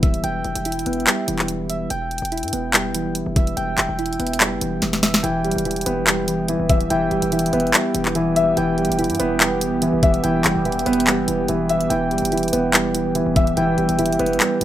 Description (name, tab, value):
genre	hip hop, trap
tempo	144 BPM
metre	4/4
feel	half-time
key	E minor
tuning	A4 = 440 Hz
part	soft electric-piano-like synth keys	arpeggios	0.0-14.6 s	E3 to G5	-23 LUFS	right 1 dB	chorus, low-pass filter, ping-pong delay
part	distorted 808-style bass	bass	0.0-14.6 s	D1 to G2	-30 LUFS	equal	distortion
part	trap drum kit	drums	0.0-14.6 s	handclaps, hi-hat, kick drum, snare drum	-19 LUFS	equal	none
part	dark concert grand piano	accompaniment	5.2-14.6 s	E3 to E5	-21 LUFS	left 1 dB	low-pass filter
part	warm analog pad	sustained chords	5.2-14.6 s	E3 to G4	-26 LUFS	right 3 dB	chorus
room	light reverb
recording	rough home demo mix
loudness	-17 LUFS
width	side -12 dB against mid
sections	0.0-14.6 A section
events	drum fill 4.8-5.2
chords	0.0 Em